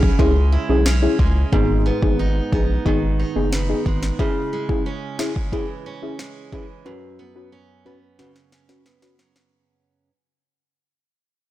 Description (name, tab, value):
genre	dancehall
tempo	90 BPM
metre	4/4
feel	straight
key	C# minor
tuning	A4 = 440 Hz
part	picked steel-string acoustic guitar	arpeggios	0.0-10.1 s	F#2 to E4	-28 LUFS	right 4 dB	none
part	saturated sub bass	bass	0.0-4.1 s	F#1 to C#2	-19 LUFS	equal	none
part	afro-pop drum kit	drums	0.0-9.5 s	kick drum, snare drum	-22 LUFS	equal	none
part	deep mellow chord stab	accompaniment	0.2-9.2 s	B3 to B4	-24 LUFS	left 2 dB	chorus
room	little or no reverb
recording	blown-out, overdriven recording, overdrive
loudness	-17 LUFS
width	side -15 dB against mid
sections	0.0-9.5 A section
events	fade-out 0.0-9.5; drum fill 8.2-9.5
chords	0.0 C#m; 1.5 G#m; 4.2 C#m; 6.9 F#sus4